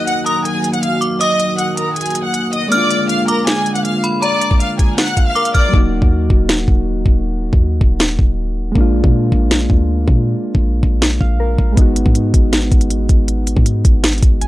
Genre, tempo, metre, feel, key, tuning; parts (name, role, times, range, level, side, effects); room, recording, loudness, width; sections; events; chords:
hip hop, trap; 159 BPM; 4/4; half-time; Eb harmonic minor; A4 = 440 Hz
warm studio violin section; melody; 0.0-5.7 s; Ab4 to Gb6; -19 LUFS; left 1 dB; tape echo
metallic FM bell; second line; 0.0-5.7 s; Bb5 to Gb6; -21 LUFS; equal; chorus, tape echo
soft electric-piano-like synth keys; accompaniment; 0.0-14.5 s; Gb3 to Ab5; -20 LUFS; equal; chorus
dark analog pad; sustained chords; 0.0-5.7 s; D3 to Gb4; -23 LUFS; right 1 dB; chorus
trap drum kit; drums; 0.1-14.5 s; hi-hat, kick drum, snare drum; -14 LUFS; equal
clean 808-style bass; bass; 5.7-14.5 s; Eb1 to Bb2; -17 LUFS; equal; tube saturation
little or no reverb; dry, gritty hardware recording; -12 LUFS; side -16 dB against mid
0.0-5.7 A section; 5.7-14.5 B section
hi-hats muted 5.7-11.8
0.0 Ebm; 2.7 Bb7; 5.7 Ebm; 8.8 Bb7; 11.8 Abm7